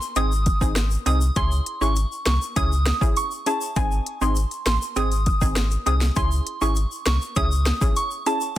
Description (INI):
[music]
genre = dancehall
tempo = 100 BPM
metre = 4/4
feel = straight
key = C# harmonic minor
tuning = A4 = 441 Hz
[part]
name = tube shaker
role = percussion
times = 0.0-8.6 s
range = none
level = -36 LUFS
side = left 9 dB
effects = none
[part]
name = soft synth bell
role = melody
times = 0.2-8.4 s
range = G#5 to D#6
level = -26 LUFS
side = right 1 dB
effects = chorus, phaser, tape echo
[part]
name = punchy chord stab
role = accompaniment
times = 0.2-8.5 s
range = B#3 to G#4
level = -28 LUFS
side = right 1 dB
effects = chorus
[part]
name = sub bass with octave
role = bass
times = 0.2-7.9 s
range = G#1 to C#2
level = -22 LUFS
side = equal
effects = none
[part]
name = afro-pop drum kit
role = drums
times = 0.2-8.4 s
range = hi-hat, kick drum, rim click, snare drum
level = -24 LUFS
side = equal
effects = none
[sound]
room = little or no reverb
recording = dense, heavily limited modern master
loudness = -20 LUFS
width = side -14 dB against mid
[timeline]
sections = 0.0-8.6 A section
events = none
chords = 0.0 G#; 1.4 C#m; 3.8 G#; 6.2 C#m